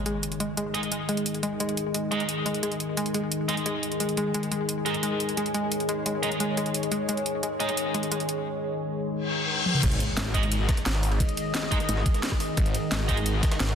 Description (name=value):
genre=dark technical drum and bass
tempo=175 BPM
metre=4/4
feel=straight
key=unclear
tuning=A4 = 440 Hz
part: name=deep dark ambient pad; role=sustained chords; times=0.0-13.8 s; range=D#3 to F#5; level=-30 LUFS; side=left 1 dB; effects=chorus, built-in reverb, sidechain pumping
part: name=impact and reverse cymbal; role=sound effects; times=0.0-0.2, 9.2-11.2 s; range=none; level=-31 LUFS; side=left 2 dB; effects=none
part: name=analog pluck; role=arpeggios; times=0.1-8.2 s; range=G#3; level=-31 LUFS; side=left 1 dB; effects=chorus, sidechain pumping, ping-pong delay
part: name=drum and bass drum kit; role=drums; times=0.1-13.7 s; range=crash cymbal, hi-hat, rim click, snare drum, toms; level=-30 LUFS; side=equal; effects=overdrive
part: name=distorted electric guitar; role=stabs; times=0.7-7.7, 10.3-13.2 s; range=G#3 to D#5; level=-34 LUFS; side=right 2 dB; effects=distortion, ping-pong delay
part: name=snarling distorted saw bass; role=bass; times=9.8-13.8 s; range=G#1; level=-27 LUFS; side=equal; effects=distortion, tube saturation, sidechain pumping
part: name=breakbeat sampler-style drum kit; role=drums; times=9.8-13.8 s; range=ride cymbal, snare drum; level=-38 LUFS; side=right 1 dB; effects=high-pass filter on cymbals, high-pass filter on snare
part: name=electronic kick drum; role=drums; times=9.8-13.5 s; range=none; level=-26 LUFS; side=equal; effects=overdrive
part: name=metallic wobble bass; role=bass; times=10.2-13.4 s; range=G#1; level=-27 LUFS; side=equal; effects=distortion, chorus
room=moderate lush hall reverb, RT60 1.9 s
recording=dense, heavily limited modern master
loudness=-24 LUFS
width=side -7 dB against mid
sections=0.0-9.8 A section; 9.8-13.8 B section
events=impact 0.0, 9.8-11.2; reverse cymbal 9.2-9.8; drum fill 9.7; drop 9.8-13.8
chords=0.0 G#5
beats=| 0.23 0.57 0.92 1.26 | 1.60 1.94 2.29 2.63 | 2.97 3.32 3.66 4.00 | 4.34 4.69 5.03 5.37 | 5.72 6.06 6.40 6.74 | 7.09 7.43 7.77 8.12 | 8.46 8.80 9.14 9.49 | 9.83 10.17 10.52 10.86 | 11.20 11.54 11.89 12.23 | 12.57 12.92 13.26 13.60